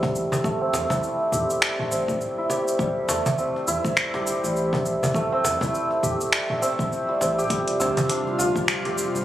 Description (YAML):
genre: organic downtempo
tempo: 102 BPM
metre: 4/4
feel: swing 59% on 16ths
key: A minor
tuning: A4 = 440 Hz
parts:
  - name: santur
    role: arpeggios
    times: 0.0-9.2 s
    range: G3 to G4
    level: -23 LUFS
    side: equal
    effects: low-pass filter, digital delay
  - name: round analog bass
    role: bass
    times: 0.0-9.2 s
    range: F1 to A2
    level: -32 LUFS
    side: equal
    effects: sidechain pumping
  - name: deep house drum kit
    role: drums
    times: 0.0-9.2 s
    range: cabasa, finger snaps, hi-hat, toms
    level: -27 LUFS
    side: equal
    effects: none
  - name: electronic kick drum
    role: drums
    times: 0.0-8.7 s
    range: none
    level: -29 LUFS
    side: equal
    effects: none
  - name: cajon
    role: percussion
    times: 0.0-9.0 s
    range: none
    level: -29 LUFS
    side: equal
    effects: none
  - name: airy breathy pad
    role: sustained chords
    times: 7.5-9.2 s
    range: C3 to F4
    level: -29 LUFS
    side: equal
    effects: chorus, sidechain pumping
room: wet echo chamber reverb, RT60 2.0 s, digital ambience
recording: recorded on a phone in the room, club reverb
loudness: -21 LUFS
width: side -12 dB against mid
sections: 0.0-9.2 A section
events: filter sweep on santur 0.0-9.2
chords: 0.0 Am7; 7.5 G7sus4